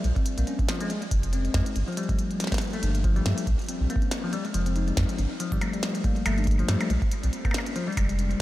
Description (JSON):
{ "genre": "IDM", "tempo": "140 BPM", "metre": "4/4", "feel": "swing 56% on 16ths", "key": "G phrygian", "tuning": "A4 = 444 Hz", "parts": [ { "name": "bell-like tine electric piano", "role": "arpeggios", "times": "0.0-8.4 s", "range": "F3 to Eb4", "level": "-29 LUFS", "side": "left 3 dB", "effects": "lush chorus, diffuse ambient delay" }, { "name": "warm sub bass", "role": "bass", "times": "0.0-8.3 s", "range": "F1 to G2", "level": "-26 LUFS", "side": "equal", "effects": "none" }, { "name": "glitchy drum kit", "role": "drums", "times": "0.0-8.4 s", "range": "hi-hat, percussion blips, snare drum", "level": "-33 LUFS", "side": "equal", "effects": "analog delay" }, { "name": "electronic kick drum", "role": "drums", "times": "0.2-8.1 s", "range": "none", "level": "-27 LUFS", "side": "equal", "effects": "none" } ], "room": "light reverb", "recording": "none", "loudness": "-24 LUFS", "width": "side -16 dB against mid", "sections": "0.0-8.4 A section", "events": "none", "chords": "0.0 Bbmadd9; 0.9 Fm; 1.8 Gm9; 3.5 Bbmadd9; 4.3 Fm9; 5.2 Gm9; 6.9 Bbm9; 7.8 Fmadd9" }